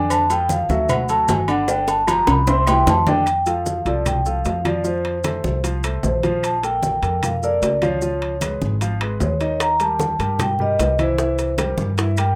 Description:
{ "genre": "Afro-Cuban jazz", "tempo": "152 BPM", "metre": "4/4", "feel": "straight", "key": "F major", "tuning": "A4 = 442 Hz", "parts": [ { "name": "vibraphone with soft mallets", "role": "melody", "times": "0.0-12.4 s", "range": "C5 to C6", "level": "-23 LUFS", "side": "equal", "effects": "none" }, { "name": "warm baby grand piano", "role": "accompaniment", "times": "0.0-12.4 s", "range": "C3 to F5", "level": "-28 LUFS", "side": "equal", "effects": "none" }, { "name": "upright bass", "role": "bass", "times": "0.0-12.3 s", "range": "G1 to G2", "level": "-26 LUFS", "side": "equal", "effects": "none" }, { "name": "agogo bells and timbales", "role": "percussion", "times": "0.1-12.4 s", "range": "none", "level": "-29 LUFS", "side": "equal", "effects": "none" }, { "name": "claves", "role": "percussion", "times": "0.1-12.4 s", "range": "none", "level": "-39 LUFS", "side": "equal", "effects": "none" }, { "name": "congas", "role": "percussion", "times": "0.1-12.4 s", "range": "none", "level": "-30 LUFS", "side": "equal", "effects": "none" }, { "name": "cowbell and bongos", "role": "percussion", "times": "0.1-3.3, 9.6-12.2 s", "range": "none", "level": "-30 LUFS", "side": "equal", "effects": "none" }, { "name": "maracas", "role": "percussion", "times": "0.1-12.4 s", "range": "none", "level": "-37 LUFS", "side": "equal", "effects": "none" } ], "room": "moderate small room reverb, RT60 0.5 s", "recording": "rough home demo mix", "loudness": "-20 LUFS", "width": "mono", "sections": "0.0-3.3 A section; 3.3-12.4 B section", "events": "vibraphone solo 0.0-3.3; drum fill 1.7-3.3", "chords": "0.1 F6; 0.9 D; 1.7 G5; 2.5 Cadd9; 3.3 F; 6.4 Bbmaj7; 8.0 Db9; 9.6 Eb6; 11.2 C7", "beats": "| 0.10 0.50 0.89 1.29 | 1.68 2.08 2.47 2.87 | 3.26 3.66 4.05 4.45 | 4.85 5.24 5.64 6.04 | 6.43 6.83 7.22 7.62 | 8.02 8.41 8.81 9.21 | 9.60 10.00 10.39 10.79 | 11.19 11.58 11.98" }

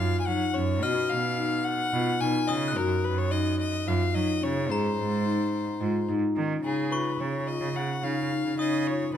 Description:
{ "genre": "contemporary instrumental, chamber music in an uneven meter", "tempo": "217 BPM (eighths)", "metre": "7/8", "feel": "straight", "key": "Db mixolydian", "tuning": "A4 = 439 Hz", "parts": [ { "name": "clear violin", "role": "melody", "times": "0.0-9.2 s", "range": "Ab4 to Ab5", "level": "-31 LUFS", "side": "left 5 dB", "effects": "none" }, { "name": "marimba with soft mallets", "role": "arpeggios", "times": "0.0-9.2 s", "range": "Db4 to Ab4", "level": "-29 LUFS", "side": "left 3 dB", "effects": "none" }, { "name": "clear cello", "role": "bass", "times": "0.0-9.2 s", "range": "Gb2 to Gb3", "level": "-29 LUFS", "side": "right 4 dB", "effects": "none" }, { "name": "glockenspiel with brass mallets", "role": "texture", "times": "0.0-9.2 s", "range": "Bb5 to Gb6", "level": "-36 LUFS", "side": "left 2 dB", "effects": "none" } ], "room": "light reverb", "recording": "close, detailed microphones", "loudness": "-24 LUFS", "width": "side -9 dB against mid", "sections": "0.0-6.6 A section; 6.6-9.2 B section", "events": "none", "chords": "0.0 Gb5; 0.8 Cb; 2.8 Gb5; 4.7 Abadd9; 6.6 Dbadd9", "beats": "0.27 0.55 | 0.82 1.10 1.38 1.66 1.93 2.21 2.49 | 2.76 3.04 3.32 3.59 3.87 4.15 4.42 | 4.70 4.98 5.26 5.53 5.81 6.09 6.36 | 6.64 6.92 7.20 7.47 7.75 8.03 8.30 | 8.58 8.86 9.14" }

